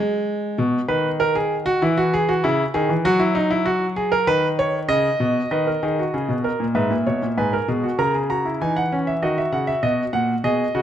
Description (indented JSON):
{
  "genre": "classical, baroque-style 3-part fugue for grand piano",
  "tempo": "98 BPM",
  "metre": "4/4",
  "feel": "straight",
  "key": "unclear",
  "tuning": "A4 = 440 Hz",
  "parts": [
    { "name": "clear grand piano", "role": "solo", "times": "0.0-10.8 s", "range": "G#2 to A#5", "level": "-18 LUFS", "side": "equal", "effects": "none" }
  ],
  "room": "moderate recital hall reverb, RT60 1.6 s",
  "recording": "close, detailed microphones",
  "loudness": "-18 LUFS",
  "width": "side -10 dB against mid",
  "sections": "0.0-5.5 A section; 5.5-10.8 B section",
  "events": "none",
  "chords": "0.0 N.C.; 0.6 B; 1.8 E; 3.0 F#7; 4.3 B/D#; 6.8 E/G#; 8.0 A#dim/C#; 9.2 D#m"
}